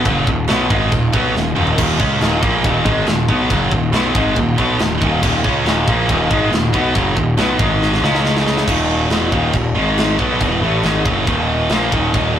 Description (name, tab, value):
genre	heavy metal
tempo	139 BPM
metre	4/4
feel	straight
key	Eb minor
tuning	A4 = 443 Hz
part	distorted electric guitar	riff	0.0-12.4 s	Eb2 to Db4	-20 LUFS	left 3 dB	distortion
part	heavy high-gain guitar	riff	0.0-12.4 s	Eb2 to Db4	-20 LUFS	right 4 dB	distortion
part	fuzz picked electric bass	bass	0.0-12.4 s	Eb1 to Db2	-19 LUFS	equal	overdrive
part	tight metal drum kit	drums	0.0-12.2 s	china cymbal, crash cymbal, kick drum, snare drum, toms	-19 LUFS	equal	none
room	moderate booth ambience, RT60 0.3 s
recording	rough rehearsal-room recording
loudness	-13 LUFS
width	side -10 dB against mid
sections	0.0-8.7 A section; 8.7-12.4 B section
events	drum fill 1.3-1.8, 7.8-8.7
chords	0.0 Ebm; 7.6 Ab5; 8.0 Db5; 8.7 Eb5; 9.8 Ab5; 10.2 Ebm